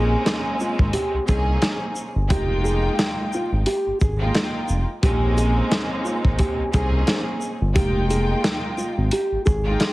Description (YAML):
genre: hip hop, boom-bap hip-hop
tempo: 88 BPM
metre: 4/4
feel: swing 55% on 16ths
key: F minor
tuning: A4 = 440 Hz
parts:
  - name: nylon-string guitar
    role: melody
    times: 0.0-9.9 s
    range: F4 to Ab4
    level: -26 LUFS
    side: equal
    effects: high-pass filter, low-pass filter
  - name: rich studio string section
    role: accompaniment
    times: 0.0-9.9 s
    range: Ab3 to G5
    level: -26 LUFS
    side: equal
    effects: high-pass filter, low-pass filter
  - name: smooth synth bass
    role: bass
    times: 0.0-9.8 s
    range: F1 to C2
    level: -22 LUFS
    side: equal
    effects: none
  - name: crunchy breakbeat drum kit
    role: drums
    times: 0.3-9.9 s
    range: hi-hat, kick drum, shaker, snare drum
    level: -23 LUFS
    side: equal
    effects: none
room: studio ambience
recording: heavily compressed radio sound, multiband compression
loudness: -19 LUFS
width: side -19 dB against mid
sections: 0.0-9.9 A section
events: none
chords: 0.0 Bbm11; 2.3 Fm11; 5.0 Bbm11; 7.8 Fm11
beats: 0.26 0.94 1.62 | 2.30 2.98 3.67 4.35 | 5.03 5.71 6.39 7.07 | 7.76 8.44 9.12 9.80